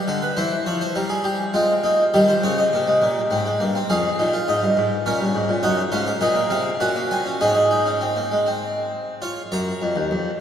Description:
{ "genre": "classical, baroque-style 4-part fugue for harpsichord", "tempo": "102 BPM", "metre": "3/4", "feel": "straight", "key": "Db major from 5.6 s", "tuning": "A4 = 440 Hz", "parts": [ { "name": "harpsichord", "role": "solo", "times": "0.0-10.4 s", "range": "Eb2 to Bb5", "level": "-18 LUFS", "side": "equal", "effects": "none" } ], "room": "wet church reverb, RT60 3.6 s", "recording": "none", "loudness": "-18 LUFS", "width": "side -9 dB against mid", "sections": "0.0-2.1 A section; 2.1-9.2 B section; 9.2-10.4 C section", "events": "none", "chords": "0.4 C7/E; 1.5 Fm/Ab; 2.1 Eb; 3.3 Abmaj7; 3.9 Db/F; 5.1 Gdim; 5.6 Gb; 7.4 Ab; 9.2 Db", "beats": "| 0.37 0.95 1.54 | 2.13 2.72 3.31 | 3.90 4.48 5.06 | 5.63 6.21 6.80 | 7.40 8.01 8.62 | 9.22 9.81 10.40" }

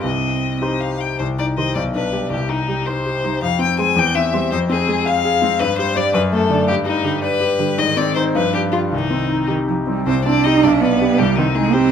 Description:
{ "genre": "quick classical-period movement for piano trio", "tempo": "108 BPM (dotted quarters)", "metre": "6/8", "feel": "rubato", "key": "C minor", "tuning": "A4 = 441 Hz", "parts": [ { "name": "rich violin", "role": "melody", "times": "0.0-11.9 s", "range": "Eb4 to Ab5", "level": "-20 LUFS", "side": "left 7 dB", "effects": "none" }, { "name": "rich cello", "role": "second line", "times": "0.0-11.9 s", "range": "D3 to Eb4", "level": "-21 LUFS", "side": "right 8 dB", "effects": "none" }, { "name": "bright grand piano", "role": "accompaniment", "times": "0.0-11.9 s", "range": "B1 to F5", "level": "-19 LUFS", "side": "left 2 dB", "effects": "none" } ], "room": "moderate recital hall reverb, RT60 1.7 s", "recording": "close, detailed microphones", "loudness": "-16 LUFS", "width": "side -8 dB against mid", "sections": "0.0-1.2 A section; 1.2-10.1 B section; 10.1-11.9 B section", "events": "none", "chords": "0.0 Cm; 1.8 G/B; 2.3 Cm; 3.4 Fm; 4.0 C/E; 4.5 Fm; 5.6 G5; 6.1 D/F#; 6.7 G; 7.8 Ab; 8.3 G5; 8.9 Cm; 10.6 G/B; 11.2 Cm", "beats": "| 0.04 0.62 | 1.20 1.77 | 2.32 2.87 | 3.42 3.98 | 4.52 5.06 | 5.60 6.14 | 6.68 7.23 | 7.79 8.35 | 8.92 9.50 | 10.08 10.63 | 11.19 11.74" }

